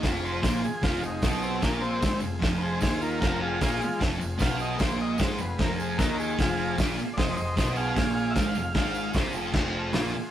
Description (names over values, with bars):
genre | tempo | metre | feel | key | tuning
garage rock duo or trio | 152 BPM | 4/4 | straight | F minor | A4 = 440 Hz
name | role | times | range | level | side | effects
combo organ | sustained chords | 0.0-10.3 s | F4 to C6 | -40 LUFS | right 1 dB | none
thick fuzz guitar | riff | 0.0-10.2 s | F2 to Eb4 | -29 LUFS | right 1 dB | distortion
growling picked electric bass | bass | 0.0-10.2 s | F1 to Eb2 | -34 LUFS | equal | overdrive
cloth-damped thuddy drum kit | drums | 0.0-10.0 s | crash cymbal, hi-hat, kick drum, snare drum | -28 LUFS | equal | none
tambourine | percussion | 0.0-9.4 s | none | -47 LUFS | right 5 dB | none
overdriven combo organ | melody | 0.2-9.1 s | Ab3 to F5 | -32 LUFS | equal | none
room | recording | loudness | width
moderate stone room reverb, RT60 1.0 s | rough rehearsal-room recording, tube saturation | -24 LUFS | side -11 dB against mid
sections
0.0-9.5 A section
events
transistor combo organ solo 0.0-9.5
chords
0.0 Fm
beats
| 0.03 0.43 0.83 1.23 | 1.62 2.02 2.42 2.82 | 3.22 3.61 4.01 4.41 | 4.80 5.20 5.59 5.99 | 6.38 6.78 7.17 7.57 | 7.96 8.35 8.75 9.14 | 9.53 9.93